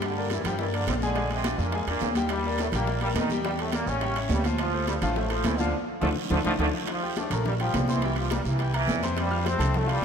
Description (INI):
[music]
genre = latin, salsa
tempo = 210 BPM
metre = 4/4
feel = straight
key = unclear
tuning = A4 = 440 Hz
[part]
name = brilliant trombone section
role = melody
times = 0.0-10.0 s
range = G2 to F4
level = -30 LUFS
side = right 1 dB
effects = none
[part]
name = bright grand piano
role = accompaniment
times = 0.0-10.0 s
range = F3 to G6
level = -31 LUFS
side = left 4 dB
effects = none
[part]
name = upright bass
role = bass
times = 0.0-10.0 s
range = A1 to G2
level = -29 LUFS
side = right 1 dB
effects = none
[part]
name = bongos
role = percussion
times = 0.0-10.0 s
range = none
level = -38 LUFS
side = left 5 dB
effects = none
[part]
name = congas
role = percussion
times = 0.0-10.0 s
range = none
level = -33 LUFS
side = equal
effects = none
[part]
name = guiro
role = percussion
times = 0.0-10.0 s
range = none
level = -41 LUFS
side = right 9 dB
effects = none
[part]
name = timbales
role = percussion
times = 0.0-10.0 s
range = none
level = -35 LUFS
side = right 6 dB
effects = none
[sound]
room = moderate concert hall reverb, RT60 2.1 s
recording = none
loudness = -24 LUFS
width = side -7 dB against mid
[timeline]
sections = 0.0-6.9 A section; 6.9-10.0 B section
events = band accent 5.7-6.9; drum fill 6.2-6.9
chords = 0.0 Gm7; 1.2 Bb7; 2.3 Ebmaj7; 3.4 Em7b5; 4.0 A7; 4.6 Dm7; 6.9 Gm7; 8.0 C7; 9.2 Fadd9